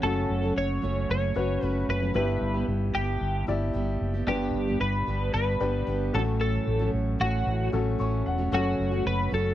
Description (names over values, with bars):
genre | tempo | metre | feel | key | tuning
piano-driven pop | 113 BPM | 4/4 | straight | A mixolydian | A4 = 440 Hz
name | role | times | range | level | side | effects
twelve-string electric guitar | melody | 0.0-9.5 s | F#4 to C#5 | -30 LUFS | left 1 dB | analog chorus, slapback echo
bright upright piano | accompaniment | 0.0-9.5 s | G2 to C#6 | -31 LUFS | left 5 dB | none
picked steel-string acoustic guitar | riff | 0.0-9.5 s | F#2 to G4 | -32 LUFS | right 6 dB | none
fingered electric bass | bass | 0.0-9.5 s | E1 to A1 | -28 LUFS | equal | none
room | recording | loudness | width
small room ambience | dry, close 1970s-style studio recording | -24 LUFS | side -12 dB against mid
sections
0.0-9.5 A section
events
upright piano fill 7.7-8.5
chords
0.0 F#m; 2.2 Em/G; 4.3 G; 6.1 A6; 8.5 F#m